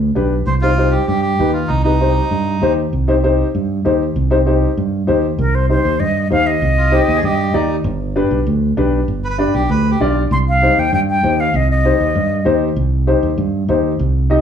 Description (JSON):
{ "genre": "latin", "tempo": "195 BPM", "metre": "4/4", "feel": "straight", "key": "C harmonic minor", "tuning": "A4 = 440 Hz", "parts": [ { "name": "fingered electric bass", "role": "bass", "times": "0.0-14.4 s", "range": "G1 to G2", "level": "-16 LUFS", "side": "right 1 dB", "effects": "none" }, { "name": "dark upright piano", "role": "accompaniment", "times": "0.2-14.4 s", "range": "D4 to Eb5", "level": "-18 LUFS", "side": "left 3 dB", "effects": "none" }, { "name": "melodica", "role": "second line", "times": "0.5-2.7, 6.8-10.2 s", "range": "Eb4 to C5", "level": "-20 LUFS", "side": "right 3 dB", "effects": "none" }, { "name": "breathy concert flute", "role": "melody", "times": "5.4-7.7, 10.3-12.6 s", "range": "Bb4 to C6", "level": "-17 LUFS", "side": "left 1 dB", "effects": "none" } ], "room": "light reverb", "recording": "small room ambience", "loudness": "-13 LUFS", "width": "side -8 dB against mid", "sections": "0.0-5.4 A section; 5.4-14.4 B section", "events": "melodica solo 0.0-5.4", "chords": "0.5 Cm; 7.8 G; 10.3 Cm", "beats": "0.17 | 0.47 0.78 1.09 1.39 | 1.70 2.01 2.31 2.62 | 2.93 3.24 3.54 3.85 | 4.16 4.47 4.77 5.08 | 5.39 5.70 6.00 6.31 | 6.62 6.93 7.23 7.54 | 7.85 8.16 8.46 8.77 | 9.08 9.39 9.69 10.00 | 10.31 10.62 10.93 11.23 | 11.54 11.85 12.15 12.46 | 12.77 13.08 13.38 13.69 | 14.00 14.31" }